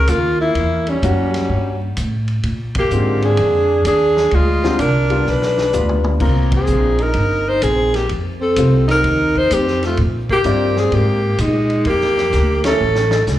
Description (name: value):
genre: jazz, small-group swing and bop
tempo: 128 BPM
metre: 4/4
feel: swing 67% on 8ths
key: Bb mixolydian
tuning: A4 = 440 Hz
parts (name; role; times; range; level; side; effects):
- breathy alto saxophone; melody; 0.0-13.2 s; C#4 to C5; -17 LUFS; equal; slapback echo
- warm tenor saxophone; second line; 0.0-13.2 s; G3 to Eb4; -23 LUFS; right 2 dB; slapback echo
- upright bass; bass; 0.0-13.4 s; G1 to Bb2; -18 LUFS; equal; none
- vintage drum kit; drums; 0.1-13.4 s; crash cymbal, hi-hat, kick drum, ride cymbal, snare drum, toms; -27 LUFS; equal; none
- warm upright piano; accompaniment; 1.0-12.8 s; D3 to D5; -23 LUFS; left 3 dB; slapback echo
room: light reverb, small room ambience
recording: live gig heard through the venue's PA, club reverb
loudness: -14 LUFS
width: side -13 dB against mid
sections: 0.0-13.4 A section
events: band accent 2.7, 6.4, 12.6; drum fill 5.3-6.2, 12.3-13.3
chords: 0.0 Eb5; 0.6 Edim7; 2.4 Bb7; 4.3 Dm7b5; 5.3 G7; 6.2 Cm7; 8.1 F7; 10.0 Bb7; 12.8 A